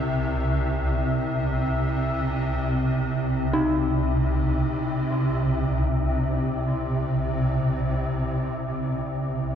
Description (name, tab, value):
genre	dark ambient drone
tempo	free time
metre	none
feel	none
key	C minor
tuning	A4 = 440 Hz
part	swarming drone	drone	0.0-9.6 s	C2 to C3	-23 LUFS	equal	built-in reverb
part	bronze singing bowl	texture	0.0-9.6 s	Bb4	-48 LUFS	right 2 dB	none
part	dark detuned synth bell	arpeggios	3.5-9.6 s	Eb4	-30 LUFS	left 2 dB	chorus, diffuse ambient delay
room	wet cathedral reverb, RT60 6.7 s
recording	worn, warbling old tape, cassette tape, warbly pitch drift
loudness	-22 LUFS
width	side -8 dB against mid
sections	0.0-9.6 A section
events	none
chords	0.0 Cm